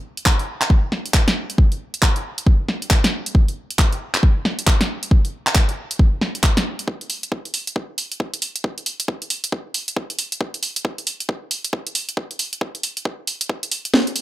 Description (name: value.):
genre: UK garage.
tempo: 136 BPM.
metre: 4/4.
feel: swing 62% on 16ths.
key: none.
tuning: none.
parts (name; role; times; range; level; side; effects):
house drum kit; drums; 0.2-14.2 s; handclaps, hi-hat, snare drum; -20 LUFS; right 1 dB; none.
electronic kick drum; drums; 0.3-14.0 s; none; -17 LUFS; equal; high-pass filter on kick, high-pass filter on room.
room: little or no reverb.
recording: none.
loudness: -18 LUFS.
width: side -15 dB against mid.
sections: 0.0-6.9 A section; 6.9-14.2 B section.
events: build-up 6.9-14.2; drum fill 13.9.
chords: none.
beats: 0.26 0.70 1.14 | 1.58 2.02 2.46 2.91 | 3.35 3.79 4.23 4.67 | 5.11 5.55 5.99 6.44 | 6.88 7.32 7.76 8.20 | 8.64 9.08 9.52 9.96 | 10.41 10.85 11.29 11.73 | 12.17 12.61 13.05 13.49 | 13.94.